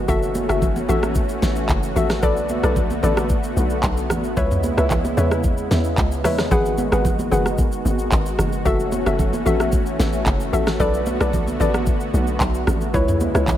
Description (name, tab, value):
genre	amapiano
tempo	112 BPM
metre	4/4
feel	straight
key	unclear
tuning	A4 = 439 Hz
part	lush unison pad	sustained chords	0.0-13.6 s	C#3 to F#4	-25 LUFS	equal	chorus
part	tight log drum bass	bass	0.0-13.6 s	F#1 to E2	-23 LUFS	equal	none
part	hollow square pluck	stabs	0.1-13.4 s	E4 to F#5	-23 LUFS	left 2 dB	chorus, digital delay
part	smooth R&B drum kit	drums	0.1-13.6 s	handclaps, hi-hat, kick drum, rim click, shaker, snare drum, toms	-22 LUFS	equal	none
part	congas	percussion	0.1-13.6 s	none	-28 LUFS	right 4 dB	none
room	digital ambience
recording	none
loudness	-17 LUFS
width	side -11 dB against mid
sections	0.0-13.6 A section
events	none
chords	0.1 F#m7; 2.2 Bm7; 4.4 C#m7; 6.5 G#m7; 8.7 F#m7; 10.8 Bm7; 12.9 C#m7